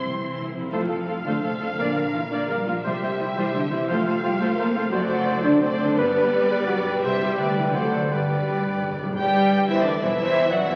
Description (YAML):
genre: classical, dramatic, fast romantic movement for symphony orchestra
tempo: 161-184 BPM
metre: 3/4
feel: straight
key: F major, G major from 4.9 s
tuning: A4 = 440 Hz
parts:
  - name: warm symphonic violin section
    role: melody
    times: 0.0-10.8 s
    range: D5 to C6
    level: -31 LUFS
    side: equal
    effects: none
  - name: warm symphonic violin section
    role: second line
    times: 0.0-10.8 s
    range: D4 to D5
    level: -35 LUFS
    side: equal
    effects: none
  - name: warm symphonic viola section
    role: accompaniment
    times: 0.0-10.8 s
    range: D3 to E4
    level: -32 LUFS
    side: equal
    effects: none
  - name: concert harp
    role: arpeggios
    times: 0.0-10.8 s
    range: F2 to Bb4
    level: -32 LUFS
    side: equal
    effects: none
  - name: clear symphonic double bass section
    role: bass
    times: 0.0-10.8 s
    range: F1 to G2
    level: -36 LUFS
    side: equal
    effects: none
  - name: rich symphonic cello section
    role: bass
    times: 0.0-10.8 s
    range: C3 to B3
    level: -34 LUFS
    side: equal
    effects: none
  - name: timpani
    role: percussion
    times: 0.0-0.7, 8.1-9.2 s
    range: G2 to C3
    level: -41 LUFS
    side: equal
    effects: none
  - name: hollow concert flute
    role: second line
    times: 0.7-10.8 s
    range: B4 to G5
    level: -33 LUFS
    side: equal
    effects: none
  - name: mellow cor anglais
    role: second line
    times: 0.7-9.0 s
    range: A4 to C5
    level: -33 LUFS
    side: equal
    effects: none
  - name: dark French horn section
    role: sustained chords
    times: 0.7-10.8 s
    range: C4 to B4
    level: -28 LUFS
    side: equal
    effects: none
room: wet recital hall reverb, RT60 1.8 s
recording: very old 78 rpm record, vinyl crackle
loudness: -23 LUFS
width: mono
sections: 0.7-9.2 A section; 9.2-10.8 B section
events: timpani fill 0.0-0.7, 8.1-9.2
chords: 0.0 C; 0.7 F; 1.8 Bb; 2.8 C; 3.9 F; 4.9 D7/F#; 6.0 G; 7.0 C; 7.4 G/D; 7.7 D7; 8.1 G